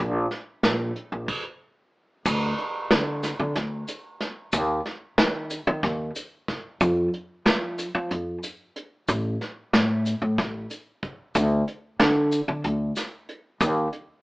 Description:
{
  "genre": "progressive instrumental, band music in an uneven meter",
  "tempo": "185 BPM (eighths)",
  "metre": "7/8",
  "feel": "straight",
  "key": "unclear",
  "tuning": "A4 = 440 Hz",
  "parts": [
    { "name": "upright bass", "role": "bass", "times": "0.0-13.9 s", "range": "A1 to F3", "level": "-25 LUFS", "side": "equal", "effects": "none" },
    { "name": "soft brush drum kit", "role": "drums", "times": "0.3-14.1 s", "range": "crash cymbal, hi-hat, kick drum, snare drum", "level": "-26 LUFS", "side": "equal", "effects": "none" },
    { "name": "tube shaker", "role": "percussion", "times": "2.3-13.9 s", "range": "none", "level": "-35 LUFS", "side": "left 1 dB", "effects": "none" }
  ],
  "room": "light reverb",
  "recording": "band playing live in one room, AM radio sound",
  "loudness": "-23 LUFS",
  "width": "side -22 dB against mid",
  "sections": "0.0-2.3 A section; 2.3-14.2 B section",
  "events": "stop 1.3-2.3",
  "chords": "none"
}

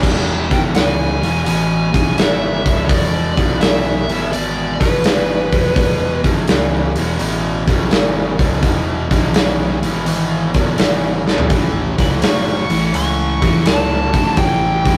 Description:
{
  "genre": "blues rock power trio and southern rock",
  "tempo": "84 BPM",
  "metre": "4/4",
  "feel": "swing 67% on 8ths",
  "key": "E major",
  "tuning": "A4 = 440 Hz",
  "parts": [
    { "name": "fuzz guitar", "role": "riff", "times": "0.0-15.0 s", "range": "E2 to F#3", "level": "-22 LUFS", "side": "equal", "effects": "distortion" },
    { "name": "overdriven picked electric bass", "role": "bass", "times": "0.0-15.0 s", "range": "E1 to E2", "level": "-24 LUFS", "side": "equal", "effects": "none" },
    { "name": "big rock drum kit", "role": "drums", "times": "0.0-15.0 s", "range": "crash cymbal, hi-hat, kick drum, snare drum, toms", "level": "-19 LUFS", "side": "equal", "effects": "none" },
    { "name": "smooth overdriven lead guitar", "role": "melody", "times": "0.5-6.2, 12.0-15.0 s", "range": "B4 to C#6", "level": "-23 LUFS", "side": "equal", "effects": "none" }
  ],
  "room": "moderate studio reverb, RT60 0.6 s",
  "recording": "rough rehearsal-room recording, warm saturation",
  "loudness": "-16 LUFS",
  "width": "mono",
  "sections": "0.0-15.0 A section",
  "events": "drum fill 11.1-11.5",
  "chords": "0.0 E; 11.5 A"
}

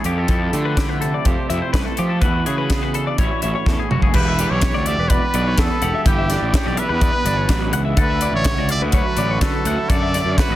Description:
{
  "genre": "math rock and midwest emo",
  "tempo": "125 BPM",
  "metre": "4/4",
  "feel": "straight",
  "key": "unclear",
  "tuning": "A4 = 440 Hz",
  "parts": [
    { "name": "twelve-string electric guitar", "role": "accompaniment", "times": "0.0-10.6 s", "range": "A2 to G4", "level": "-26 LUFS", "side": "right 7 dB", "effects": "spring reverb" },
    { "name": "twelve-string electric guitar", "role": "arpeggios", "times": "0.0-10.6 s", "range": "F#4 to F#5", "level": "-25 LUFS", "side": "left 7 dB", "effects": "spring reverb, plate reverb, analog delay" },
    { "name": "fuzz picked electric bass", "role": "bass", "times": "0.0-10.6 s", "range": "E1 to F3", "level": "-22 LUFS", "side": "equal", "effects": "overdrive" },
    { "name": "crisp fusion drum kit", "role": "drums", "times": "0.0-10.5 s", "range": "crash cymbal, hi-hat, kick drum, snare drum, toms", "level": "-20 LUFS", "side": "equal", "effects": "none" },
    { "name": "bright trumpet", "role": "melody", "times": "4.1-10.6 s", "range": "G4 to D5", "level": "-23 LUFS", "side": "right 1 dB", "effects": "none" }
  ],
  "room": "light reverb",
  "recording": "dense, heavily limited modern master",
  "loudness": "-16 LUFS",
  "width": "side -14 dB against mid",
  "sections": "0.0-4.1 A section; 4.1-10.6 B section",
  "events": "drum fill 3.7-4.1",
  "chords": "0.1 Fmaj9#11; 2.2 E9; 3.2 A6; 4.1 Em7; 8.0 Dmaj9"
}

